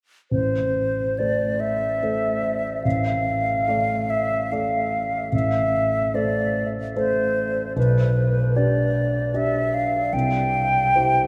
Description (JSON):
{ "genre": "classical, romantic duo for flute and grand piano", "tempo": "67-76 BPM", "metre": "3/4", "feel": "rubato", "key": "A minor", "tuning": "A4 = 436 Hz", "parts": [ { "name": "hollow concert flute", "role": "melody", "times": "0.3-11.3 s", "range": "B4 to G5", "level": "-24 LUFS", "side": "equal", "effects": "none" }, { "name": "dark grand piano", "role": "accompaniment", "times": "0.3-11.3 s", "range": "A1 to D5", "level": "-26 LUFS", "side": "equal", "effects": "none" } ], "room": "wet cathedral reverb, RT60 6.5 s", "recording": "in a vast, echoing space", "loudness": "-22 LUFS", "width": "mono", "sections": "0.3-11.3 A section", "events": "none", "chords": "0.3 Am; 2.8 Dm/A; 5.3 Am; 7.8 G/B; 10.1 C" }